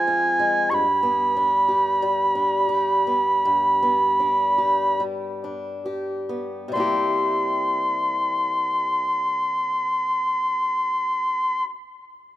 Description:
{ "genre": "celtic folk, Celtic slow air", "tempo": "34-49 BPM", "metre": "4/4", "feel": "rubato", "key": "unclear", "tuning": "A4 = 435 Hz", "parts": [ { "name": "mellow small bagpipes", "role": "melody", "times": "0.0-11.6 s", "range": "Ab5 to Db6", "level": "-20 LUFS", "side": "right 1 dB", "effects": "none" }, { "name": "picked swing-style acoustic guitar", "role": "accompaniment", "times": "0.0-11.7 s", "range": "F2 to G4", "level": "-28 LUFS", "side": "left 1 dB", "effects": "none" } ], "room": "moderate plate reverb, RT60 2.6 s", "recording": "rough home demo mix", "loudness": "-19 LUFS", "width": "side -14 dB against mid", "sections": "0.0-6.7 A section; 6.7-12.4 B section", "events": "slowing down 0.0-6.7", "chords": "0.0 Fm; 0.7 G; 6.7 C7", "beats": "| 0.71 2.02 3.44 5.01 | 6.72 8.44 10.08" }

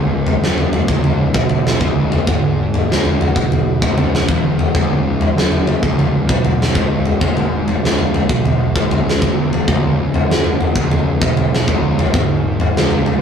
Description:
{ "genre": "stoner and doom metal", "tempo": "97 BPM", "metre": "4/4", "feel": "straight", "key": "C# minor", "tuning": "A4 = 440 Hz", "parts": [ { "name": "fuzz guitar", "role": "riff", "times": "0.0-13.2 s", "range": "C#2 to B2", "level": "-19 LUFS", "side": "equal", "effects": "distortion" }, { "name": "fuzz picked electric bass", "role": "bass", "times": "0.0-13.2 s", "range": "C#1 to B1", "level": "-23 LUFS", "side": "equal", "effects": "overdrive" }, { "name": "big rock drum kit", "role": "drums", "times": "0.3-13.2 s", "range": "kick drum, snare drum, toms", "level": "-15 LUFS", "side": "equal", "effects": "none" } ], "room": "light reverb", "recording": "rough rehearsal-room recording", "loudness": "-13 LUFS", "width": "side -7 dB against mid", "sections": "0.0-13.2 A section", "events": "none", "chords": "0.0 C#m", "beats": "0.42 1.04 1.66 | 2.27 2.89 3.51 4.12 | 4.74 5.36 5.98 6.59 | 7.21 7.83 8.44 9.06 | 9.67 10.29 10.91 11.52 | 12.14 12.75" }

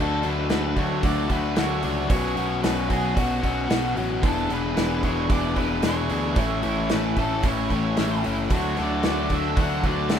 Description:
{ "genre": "indie rock", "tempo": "112 BPM", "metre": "4/4", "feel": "straight", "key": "D lydian", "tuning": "A4 = 440 Hz", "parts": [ { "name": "octave-fuzz lead guitar", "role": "melody", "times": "0.0-10.1 s", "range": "F#4 to F#5", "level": "-30 LUFS", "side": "right 2 dB", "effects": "distortion" }, { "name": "crunchy overdriven guitar", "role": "riff", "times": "0.0-10.2 s", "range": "A2 to G#4", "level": "-26 LUFS", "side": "left 8 dB", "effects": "none" }, { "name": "crunchy overdriven guitar", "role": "riff", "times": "0.0-10.2 s", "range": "E2 to F#4", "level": "-29 LUFS", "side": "right 10 dB", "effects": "lush chorus" }, { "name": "modern bright picked electric bass", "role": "bass", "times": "0.0-10.2 s", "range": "E1 to D2", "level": "-30 LUFS", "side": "right 1 dB", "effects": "none" }, { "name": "loose indie drum kit", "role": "drums", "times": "0.2-10.2 s", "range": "hi-hat, kick drum, snare drum", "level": "-26 LUFS", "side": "right 1 dB", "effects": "none" } ], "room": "little or no reverb", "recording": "rough home demo mix", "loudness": "-21 LUFS", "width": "side -8 dB against mid", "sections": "0.0-10.2 A section", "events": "none", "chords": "0.0 Dmaj7; 2.1 Bsus2; 4.2 E7; 6.4 A; 8.5 D", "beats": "0.51 1.04 1.58 | 2.11 2.64 3.18 3.71 | 4.24 4.78 5.31 5.84 | 6.38 6.91 7.44 7.98 | 8.51 9.04 9.58 10.11" }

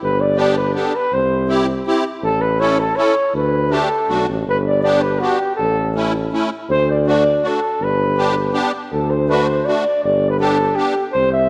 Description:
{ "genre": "alpine folk, alpine dance band", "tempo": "162 BPM", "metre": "3/4", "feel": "straight", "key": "G major", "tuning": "A4 = 440 Hz", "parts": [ { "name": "mellow flugelhorn", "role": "melody", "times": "0.0-11.5 s", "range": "F#4 to E5", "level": "-20 LUFS", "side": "equal", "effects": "none" }, { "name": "warm tuba", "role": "bass", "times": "0.0-11.5 s", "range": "G1 to D2", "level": "-22 LUFS", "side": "equal", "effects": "none" }, { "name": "musette accordion", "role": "accompaniment", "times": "0.4-10.9 s", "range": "A3 to A4", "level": "-24 LUFS", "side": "equal", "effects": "none" } ], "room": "moderate concert hall reverb, RT60 1.9 s", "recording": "none", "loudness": "-18 LUFS", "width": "mono", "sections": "0.0-11.5 A section", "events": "none", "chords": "0.0 G; 1.1 C; 2.2 A; 3.3 Dsus4; 4.1 D; 4.5 G; 5.6 A; 6.7 D; 7.8 G; 8.9 D; 10.0 G", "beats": "| 0.03 0.40 0.77 | 1.14 1.50 1.87 | 2.24 2.61 2.98 | 3.35 3.72 4.10 | 4.48 4.85 5.22 | 5.59 5.96 6.33 | 6.70 7.07 7.44 | 7.80 8.18 8.55 | 8.93 9.30 9.67 | 10.04 10.41 10.78 | 11.15" }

